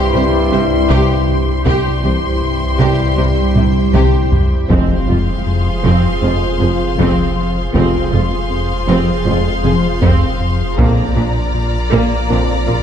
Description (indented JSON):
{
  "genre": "cinematic, hybrid orchestral and electronic film score",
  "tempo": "79 BPM",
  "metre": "4/4",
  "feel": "straight",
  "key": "F dorian",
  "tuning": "A4 = 440 Hz",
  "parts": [
    { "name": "rich symphonic violin section", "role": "melody", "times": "0.0-12.8 s", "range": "Bb5 to C6", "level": "-25 LUFS", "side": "left 4 dB", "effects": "none" },
    { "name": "rich symphonic violin section", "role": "second line", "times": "0.0-12.8 s", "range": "G4 to F5", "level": "-28 LUFS", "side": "left 3 dB", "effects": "none" },
    { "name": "rich symphonic viola section", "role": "accompaniment", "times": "0.0-12.8 s", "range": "Bb3 to Ab4", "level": "-23 LUFS", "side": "right 1 dB", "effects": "none" },
    { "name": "mellow French horn section", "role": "sustained chords", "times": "0.0-12.6 s", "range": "Bb3 to F4", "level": "-23 LUFS", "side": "left 7 dB", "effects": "none" },
    { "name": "soft additive organ-like pad", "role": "sustained chords", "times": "0.0-12.8 s", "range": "F3 to D5", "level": "-22 LUFS", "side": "right 1 dB", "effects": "ensemble chorus, built-in reverb" },
    { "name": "warm trombone section", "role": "sustained chords", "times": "0.0-12.6 s", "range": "F2 to Bb3", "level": "-24 LUFS", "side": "right 4 dB", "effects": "none" },
    { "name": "punchy sub bass", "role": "bass", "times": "0.0-12.8 s", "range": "F1 to C2", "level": "-20 LUFS", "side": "equal", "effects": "none" },
    { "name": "thumb-piano-like synth pluck", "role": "arpeggios", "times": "0.1-12.8 s", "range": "C3 to Bb4", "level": "-24 LUFS", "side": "right 2 dB", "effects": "none" },
    { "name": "smooth synth bass", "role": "riff", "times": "0.1-12.8 s", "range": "C2 to Bb3", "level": "-20 LUFS", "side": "left 2 dB", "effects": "none" },
    { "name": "rich symphonic cello section", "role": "bass", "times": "0.1-12.8 s", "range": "F2 to C3", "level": "-22 LUFS", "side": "right 3 dB", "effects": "none" },
    { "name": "rich symphonic double bass section", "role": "bass", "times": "0.1-12.8 s", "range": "F1 to C2", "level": "-22 LUFS", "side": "right 3 dB", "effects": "none" },
    { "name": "taiko ensemble", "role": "drums", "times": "0.9-11.5 s", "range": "none", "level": "-20 LUFS", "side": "equal", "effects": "none" },
    { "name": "impact", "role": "sound effects", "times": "4.7-7.7 s", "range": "none", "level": "-23 LUFS", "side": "equal", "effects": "none" }
  ],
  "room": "moderate concert hall reverb, RT60 2.4 s",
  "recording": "dark, warm production",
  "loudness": "-12 LUFS",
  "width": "side -8 dB against mid",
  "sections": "0.0-4.7 A section; 4.7-12.8 B section",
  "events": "drum fill 3.6-4.7; impact 4.7-7.7",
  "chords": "0.0 C; 4.7 Fm; 10.8 Bb"
}